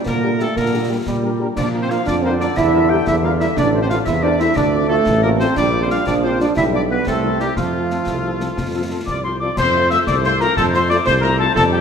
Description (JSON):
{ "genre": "military-style march for wind band", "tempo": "120 BPM (dotted quarters)", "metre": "6/8", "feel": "straight", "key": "F major", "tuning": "A4 = 440 Hz", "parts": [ { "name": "warm euphonium", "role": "second line", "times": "0.0-9.4 s", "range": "F3 to G4", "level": "-20 LUFS", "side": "right 3 dB", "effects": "none" }, { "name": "clear trombone section", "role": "sustained chords", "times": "0.0-11.8 s", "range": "C3 to D4", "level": "-27 LUFS", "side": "right 2 dB", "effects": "none" }, { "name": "clear woodwind section", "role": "second line", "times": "0.1-11.8 s", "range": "F4 to G5", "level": "-24 LUFS", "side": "left 3 dB", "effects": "none" }, { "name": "mellow tuba", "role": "bass", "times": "0.1-11.8 s", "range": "A1 to Bb2", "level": "-21 LUFS", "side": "right 2 dB", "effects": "none" }, { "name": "concert snare drum, concert bass drum and clash cymbals", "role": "drums", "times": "0.1-11.7 s", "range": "none", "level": "-27 LUFS", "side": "left 1 dB", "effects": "none" }, { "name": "mellow trumpet section", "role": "melody", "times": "0.2-11.8 s", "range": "G4 to E5", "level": "-22 LUFS", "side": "left 1 dB", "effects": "none" }, { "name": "dark French horn section", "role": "accompaniment", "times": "0.2-11.8 s", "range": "F3 to G4", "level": "-27 LUFS", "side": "left 5 dB", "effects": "none" }, { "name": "mellow wooden piccolo", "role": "second line", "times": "9.1-11.8 s", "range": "G5 to E6", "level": "-20 LUFS", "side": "left 5 dB", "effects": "none" } ], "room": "moderate scoring stage reverb, RT60 1.9 s", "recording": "none", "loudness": "-15 LUFS", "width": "side -7 dB against mid", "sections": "0.0-9.6 A section; 9.6-11.8 B section", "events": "none", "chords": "0.0 Gm/Bb; 1.6 Bb; 2.6 Em7b5; 3.6 Am; 4.6 Dm7; 5.6 Gm7/Bb; 6.6 G7/B; 7.1 C7; 7.6 F", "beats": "0.07 | 0.57 1.07 | 1.57 2.07 | 2.57 3.07 | 3.57 4.07 | 4.57 5.07 | 5.57 6.07 | 6.57 7.07 | 7.57 8.07 | 8.57 9.07 | 9.57 10.07 | 10.57 11.07 | 11.57" }